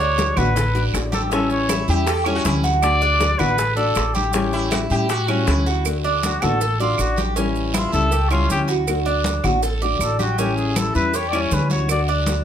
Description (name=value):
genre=latin, Cuban son and guajira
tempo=159 BPM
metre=4/4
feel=straight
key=D major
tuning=A4 = 440 Hz
part: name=breathy trumpet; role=melody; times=0.0-12.0 s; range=F4 to D5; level=-23 LUFS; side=left 2 dB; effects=slapback echo
part: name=nylon-string guitar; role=accompaniment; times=0.0-12.4 s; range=D3 to F#4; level=-26 LUFS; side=left 6 dB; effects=none
part: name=Cuban tres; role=arpeggios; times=0.0-12.4 s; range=C#4 to D5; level=-24 LUFS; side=right 3 dB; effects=none
part: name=upright bass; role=bass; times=0.0-12.4 s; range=A1 to A2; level=-22 LUFS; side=right 1 dB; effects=none
part: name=bongos and cowbell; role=percussion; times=0.0-12.4 s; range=none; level=-31 LUFS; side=left 2 dB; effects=none
part: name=congas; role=percussion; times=0.0-12.4 s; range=none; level=-28 LUFS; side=left 2 dB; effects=none
part: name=maracas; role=percussion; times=0.0-12.4 s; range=none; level=-32 LUFS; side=right 9 dB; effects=none
part: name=guiro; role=percussion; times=0.2-12.4 s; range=none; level=-33 LUFS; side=right 6 dB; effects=none
part: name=claves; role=percussion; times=0.4-12.1 s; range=none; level=-31 LUFS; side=right 9 dB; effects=none
part: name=sitar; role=second line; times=1.9-5.8 s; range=E4 to A4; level=-26 LUFS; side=right 1 dB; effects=none
room=light reverb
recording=close, detailed microphones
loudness=-17 LUFS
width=side -9 dB against mid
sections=0.0-5.9 A section; 5.9-12.4 B section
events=trumpet solo 5.9-12.4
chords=0.0 D; 1.3 A7; 2.8 D; 4.3 A7; 5.9 D; 7.4 A7; 8.9 D; 10.4 A7; 11.9 D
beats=0.18 0.56 0.94 | 1.32 1.70 2.07 2.45 | 2.83 3.21 3.58 3.96 | 4.34 4.72 5.10 5.47 | 5.85 6.23 6.61 6.99 | 7.36 7.74 8.12 8.50 | 8.88 9.25 9.63 10.01 | 10.39 10.76 11.14 11.52 | 11.90 12.27